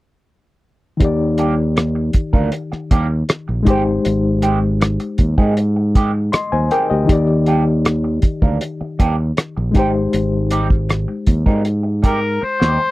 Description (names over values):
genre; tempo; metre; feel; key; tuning
lush 1970s-style soul; 79 BPM; 4/4; straight; Eb major; A4 = 440 Hz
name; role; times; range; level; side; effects
reed electric piano; accompaniment; 1.0-12.9 s; Eb3 to C6; -20 LUFS; left 3 dB; fast tremolo
overdriven fingered electric bass; bass; 1.0-12.8 s; Ab1 to Ab2; -18 LUFS; equal; none
cloth-damped thuddy drum kit; drums; 1.0-12.8 s; hi-hat, kick drum, rim click, snare drum; -15 LUFS; equal; none
electric guitar through a small old amp; riff; 1.4-12.8 s; Eb3 to Bb4; -22 LUFS; right 4 dB; wah
overdriven harmonica; melody; 12.1-12.9 s; Bb4 to C5; -18 LUFS; left 3 dB; none
room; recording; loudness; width
little or no reverb; dry, close 1970s-style studio recording; -14 LUFS; side -18 dB against mid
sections
1.0-12.9 A section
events
drum fill 12.4-12.9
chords
1.0 Ebmaj7; 3.7 Abmaj7; 7.1 Ebmaj7; 9.8 Abmaj7